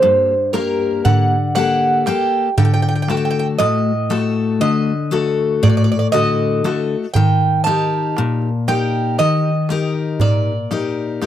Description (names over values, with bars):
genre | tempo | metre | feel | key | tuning
greek folk, Greek bouzouki band | 118 BPM (eighths) | 9/8 | straight | unclear | A4 = 441 Hz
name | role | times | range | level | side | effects
Greek bouzouki | melody | 0.0-11.3 s | Bb4 to A5 | -19 LUFS | right 3 dB | none
picked steel-string acoustic guitar | accompaniment | 0.0-11.3 s | G2 to Bb4 | -18 LUFS | left 4 dB | none
darbuka | percussion | 0.0-11.3 s | none | -18 LUFS | right 2 dB | none
room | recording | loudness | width
light reverb | dry, close 1970s-style studio recording | -15 LUFS | side -11 dB against mid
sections
0.0-11.3 A section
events
none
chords
0.0 Gmadd9; 2.6 D; 7.2 Eb